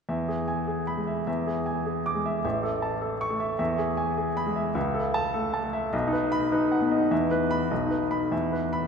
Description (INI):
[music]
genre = classical, virtuoso piano study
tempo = 102 BPM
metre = 2/4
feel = rubato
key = E major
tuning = A4 = 440 Hz
[part]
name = warm baby grand piano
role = solo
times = 0.1-8.9 s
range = A1 to D6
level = -24 LUFS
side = equal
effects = none
[sound]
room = wet church reverb, RT60 3.2 s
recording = recorded in a church or concert hall, nothing above 10.3 kHz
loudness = -24 LUFS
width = side -6 dB against mid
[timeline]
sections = 0.1-8.9 A section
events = none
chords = 0.1 E; 1.3 E7; 2.4 A; 3.6 E; 4.8 A/C#; 5.9 B; 7.1 E5; 7.7 B; 8.3 E5